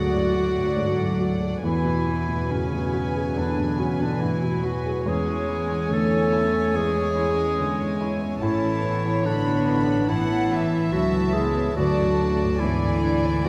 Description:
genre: cinematic, emotional film score for orchestra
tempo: 71 BPM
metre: 4/4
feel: rubato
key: A major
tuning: A4 = 440 Hz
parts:
  - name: warm symphonic violin section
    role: melody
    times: 0.0-13.5 s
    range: F#5 to B5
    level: -38 LUFS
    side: equal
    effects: none
  - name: clear clarinet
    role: second line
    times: 0.0-13.5 s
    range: C#4 to A4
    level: -28 LUFS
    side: equal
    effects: none
  - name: warm symphonic violin section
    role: second line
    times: 0.0-13.5 s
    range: B4 to F#5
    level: -34 LUFS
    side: equal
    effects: none
  - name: dark symphonic viola section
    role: accompaniment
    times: 0.0-13.5 s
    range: F#3 to C#4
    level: -36 LUFS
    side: equal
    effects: none
  - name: warm baby grand piano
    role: accompaniment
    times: 0.0-13.5 s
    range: D2 to D5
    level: -31 LUFS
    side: equal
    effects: none
  - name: concert harp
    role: arpeggios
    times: 0.0-13.5 s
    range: A2 to G#5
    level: -36 LUFS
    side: equal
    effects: none
  - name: dark symphonic double bass section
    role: bass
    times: 0.0-13.5 s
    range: A1 to E2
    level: -32 LUFS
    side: equal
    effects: none
  - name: warm symphonic cello section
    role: bass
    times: 0.0-13.5 s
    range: C#3 to A3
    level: -31 LUFS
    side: equal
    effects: none
room: moderate scoring stage reverb, RT60 1.9 s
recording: none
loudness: -23 LUFS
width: mono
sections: 0.0-13.5 A section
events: none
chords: 0.0 D; 1.6 Eadd9; 5.0 C#m/E; 8.4 Aadd9; 11.8 D

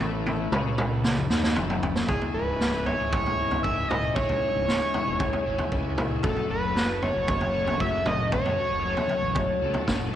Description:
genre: psychedelic rock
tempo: 116 BPM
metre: 4/4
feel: straight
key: C# minor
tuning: A4 = 436 Hz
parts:
  - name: combo organ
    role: sustained chords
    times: 0.0-10.2 s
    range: A3 to A5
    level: -39 LUFS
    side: right 11 dB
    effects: none
  - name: overdriven semi-hollow guitar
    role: riff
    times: 0.0-10.2 s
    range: C#2 to F#4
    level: -31 LUFS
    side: left 10 dB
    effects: rotary speaker
  - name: fuzz fingered electric bass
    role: bass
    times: 0.0-10.1 s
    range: C#1 to F#2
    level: -32 LUFS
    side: right 1 dB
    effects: overdrive
  - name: raw garage drum kit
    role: drums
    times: 0.0-10.0 s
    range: kick drum, snare drum, toms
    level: -28 LUFS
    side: right 1 dB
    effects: none
  - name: overdriven synth lead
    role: melody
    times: 2.1-10.1 s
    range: G#4 to E5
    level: -27 LUFS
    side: right 1 dB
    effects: distortion, slapback echo
room: light reverb, studio reverb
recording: 1960s-style stereo with parts hard left and right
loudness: -23 LUFS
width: side -11 dB against mid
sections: 0.0-2.1 A section; 2.1-10.2 B section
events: drum fill 0.0-2.1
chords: 0.0 A5; 2.1 C#m; 6.2 F#m

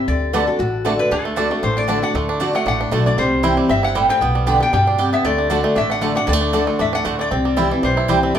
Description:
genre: bluegrass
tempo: 232 BPM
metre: 4/4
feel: swing 54% on 8ths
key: D mixolydian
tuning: A4 = 440 Hz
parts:
  - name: lap resonator guitar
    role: melody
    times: 0.0-8.4 s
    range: A4 to G5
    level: -22 LUFS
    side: left 2 dB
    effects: none
  - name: picked steel-string acoustic guitar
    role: accompaniment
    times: 0.0-8.4 s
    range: G2 to G4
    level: -21 LUFS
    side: left 2 dB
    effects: none
  - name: upright bass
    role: bass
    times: 0.1-8.4 s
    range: G1 to G2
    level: -23 LUFS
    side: equal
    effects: none
  - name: bluegrass banjo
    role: melody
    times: 0.3-8.4 s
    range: D3 to G4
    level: -23 LUFS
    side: right 4 dB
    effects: none
  - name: lap resonator guitar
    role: second line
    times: 0.3-1.1 s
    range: F#4 to B4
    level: -26 LUFS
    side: left 2 dB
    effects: none
  - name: mandolin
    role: stabs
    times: 0.3-8.2 s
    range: A3 to A5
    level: -23 LUFS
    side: right 5 dB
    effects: none
room: wet large studio reverb, RT60 0.9 s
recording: band playing live in one room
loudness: -15 LUFS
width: side -9 dB against mid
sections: 0.0-1.1 A section; 1.1-8.4 A section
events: none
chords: 0.1 D; 3.2 C; 4.2 G/B; 5.2 D; 7.3 C

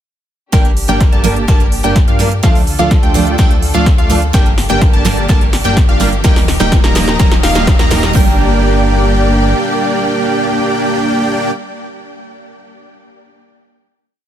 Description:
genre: EDM, festival progressive house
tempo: 126 BPM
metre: 4/4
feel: straight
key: G minor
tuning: A4 = 438 Hz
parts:
  - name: picked steel-string acoustic guitar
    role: accompaniment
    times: 0.5-11.5 s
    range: G2 to Bb4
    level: -20 LUFS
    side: right 5 dB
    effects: sidechain pumping, digital delay
  - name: rich studio string section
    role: sustained chords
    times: 0.5-11.5 s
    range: D3 to D5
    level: -25 LUFS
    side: left 2 dB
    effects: sidechain pumping, low-pass filter
  - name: plucky unison lead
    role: arpeggios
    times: 0.5-11.5 s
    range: F5 to Bb5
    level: -20 LUFS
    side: equal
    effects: sidechain pumping, digital delay
  - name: dense compressed supersaw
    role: riff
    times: 0.5-11.5 s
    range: A3 to Bb5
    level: -17 LUFS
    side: right 1 dB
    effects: sidechain pumping, low-pass filter, digital delay
  - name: fat analog bass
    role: bass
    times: 0.5-9.5 s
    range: Eb1 to G2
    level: -17 LUFS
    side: equal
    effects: sidechain pumping
  - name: big-room dance drum kit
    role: drums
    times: 0.5-8.3 s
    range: hi-hat, kick drum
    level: -11 LUFS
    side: equal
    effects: overdrive
  - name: big-room dance drum kit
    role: drums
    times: 0.5-8.1 s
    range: hi-hat, snare drum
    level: -21 LUFS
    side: equal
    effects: overdrive
  - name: riser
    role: sound effects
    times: 4.5-8.1 s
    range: none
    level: -25 LUFS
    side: equal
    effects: none
room: little or no reverb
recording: none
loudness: -9 LUFS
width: side -10 dB against mid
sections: 0.5-8.2 build; 8.2-12.0 final chord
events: build-up 0.5-8.2; drum fill 0.5-8.2; filter sweep on supersaw synth 0.5-8.2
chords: 0.5 Gm; 2.4 Dm; 4.3 Gm; 6.2 Eb; 8.2 Gm

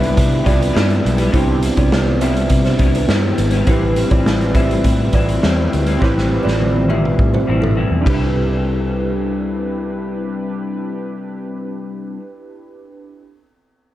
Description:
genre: indie pop, bedroom pop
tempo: 103 BPM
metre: 4/4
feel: straight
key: C major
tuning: A4 = 440 Hz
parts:
  - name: kalimba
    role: second line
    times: 0.0-10.1 s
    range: C4 to E5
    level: -24 LUFS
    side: right 4 dB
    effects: wide subtle chorus, tape echo
  - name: electric guitar through a small old amp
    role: accompaniment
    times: 0.0-12.2 s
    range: A2 to E4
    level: -22 LUFS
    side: left 4 dB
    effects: analog chorus, vibrato effect
  - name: warbly lo-fi synth keys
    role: accompaniment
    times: 0.0-13.2 s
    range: C4 to B4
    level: -24 LUFS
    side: right 2 dB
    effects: chorus
  - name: vintage muted fingered electric bass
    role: bass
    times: 0.0-12.2 s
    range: Ab1 to C3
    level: -19 LUFS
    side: equal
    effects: none
  - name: raw garage drum kit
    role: drums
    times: 0.0-8.2 s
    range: hi-hat, kick drum, ride cymbal, snare drum, toms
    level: -18 LUFS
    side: equal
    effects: none
room: moderate small room ambience, RT60 0.5 s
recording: dark, warm production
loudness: -14 LUFS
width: side -14 dB against mid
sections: 0.0-8.3 A section; 8.3-10.7 B section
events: drum fill 6.0-8.3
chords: 0.0 Cmaj7; 3.7 Am7; 8.1 Cmaj7

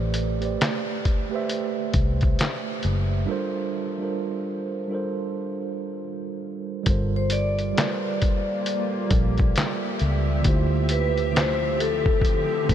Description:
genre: lo-fi hip hop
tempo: 67 BPM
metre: 4/4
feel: swing 63% on 16ths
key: G dorian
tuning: A4 = 441 Hz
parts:
  - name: mellow tine electric piano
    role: accompaniment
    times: 0.0-12.7 s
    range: D3 to E5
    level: -28 LUFS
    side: right 5 dB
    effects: slow stereo tremolo, cassette tape
  - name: vintage muted fingered electric bass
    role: bass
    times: 0.0-12.7 s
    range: F#1 to D2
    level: -24 LUFS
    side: left 1 dB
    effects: none
  - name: lo-fi sampler-style drum kit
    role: drums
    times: 0.1-12.7 s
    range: handclaps, hi-hat, kick drum, snare drum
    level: -25 LUFS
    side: left 1 dB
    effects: none
  - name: granular cloud pad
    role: sustained chords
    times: 7.7-12.7 s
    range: D3 to E5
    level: -32 LUFS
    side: left 1 dB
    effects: built-in reverb
  - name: vibraphone with medium mallets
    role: melody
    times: 7.2-12.7 s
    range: A4 to D5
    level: -28 LUFS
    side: left 3 dB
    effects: tape echo
room: light reverb, digital ambience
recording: none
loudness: -22 LUFS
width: side -10 dB against mid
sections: 0.0-6.9 A section; 6.9-12.7 B section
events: break 0.0-6.9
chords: 0.0 Am11; 3.3 Gm11; 10.4 Dm11

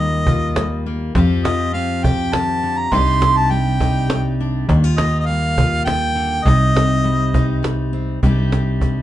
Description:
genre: acoustic folk duo or small band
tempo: 102 BPM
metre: 3/4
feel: straight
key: C minor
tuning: A4 = 440 Hz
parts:
  - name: warm harmonica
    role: melody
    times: 0.0-7.6 s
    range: Eb5 to C6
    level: -20 LUFS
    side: right 1 dB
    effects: none
  - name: fingerpicked steel-string acoustic guitar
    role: accompaniment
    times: 0.0-9.0 s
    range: C3 to G4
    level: -22 LUFS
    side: left 3 dB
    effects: none
  - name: plucky analog bass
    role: bass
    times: 0.0-9.0 s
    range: C2 to F2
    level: -19 LUFS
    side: equal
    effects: none
  - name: cajon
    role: percussion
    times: 0.3-9.0 s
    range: none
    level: -20 LUFS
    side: right 1 dB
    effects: none
room: wet small room reverb, RT60 0.5 s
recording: band playing live in one room, nothing above 10.9 kHz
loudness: -15 LUFS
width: side -13 dB against mid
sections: 0.0-8.2 A section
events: none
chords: 0.0 Ebadd9; 1.1 Fsus2; 2.9 Cmadd9; 4.7 Ebadd9; 6.5 Cm; 8.2 Cmadd9

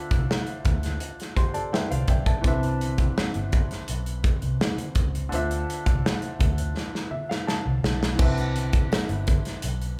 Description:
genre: lush 1970s-style soul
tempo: 84 BPM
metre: 4/4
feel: straight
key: C major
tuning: A4 = 439 Hz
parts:
  - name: warm concert grand piano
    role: accompaniment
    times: 0.0-10.0 s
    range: D3 to C6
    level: -34 LUFS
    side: equal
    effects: none
  - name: vintage muted fingered electric bass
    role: bass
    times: 0.1-10.0 s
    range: G1 to D2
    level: -31 LUFS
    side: equal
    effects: none
  - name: modern studio drum kit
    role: drums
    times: 0.1-10.0 s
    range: crash cymbal, hi-hat, kick drum, snare drum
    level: -27 LUFS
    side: equal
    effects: none
  - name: congas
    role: percussion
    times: 0.1-9.8 s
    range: none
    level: -39 LUFS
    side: equal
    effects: none
  - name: tambourine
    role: percussion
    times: 8.9-9.1 s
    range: none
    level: -49 LUFS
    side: equal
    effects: none
room: moderate large studio reverb, RT60 0.9 s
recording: band playing live in one room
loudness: -25 LUFS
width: mono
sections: 0.0-8.2 A section; 8.2-10.0 B section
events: grand piano fill 1.0-2.4, 6.8-8.2; drum fill 6.8-8.2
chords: 0.0 Dm7; 2.4 Cmaj7; 5.3 Dm7; 8.2 Cmaj7

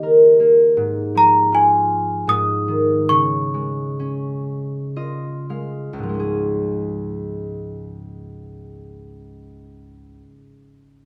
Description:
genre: children's music, lullaby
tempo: 51-81 BPM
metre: 3/4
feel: rubato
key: Db major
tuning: A4 = 440 Hz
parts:
  - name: worn celesta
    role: melody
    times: 0.0-4.9 s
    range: Eb5 to Eb6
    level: -19 LUFS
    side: equal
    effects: none
  - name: concert harp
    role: accompaniment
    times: 0.0-10.5 s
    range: Db2 to F5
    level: -21 LUFS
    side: equal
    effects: none
room: moderate small room reverb, RT60 0.5 s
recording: none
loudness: -18 LUFS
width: mono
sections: 0.0-6.1 A section; 6.1-9.5 B section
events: slowing down 0.8-6.1; harp fill 4.5-6.1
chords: 0.0 Eb; 0.8 Fmadd11/Ab; 2.3 Ab5; 3.1 Db

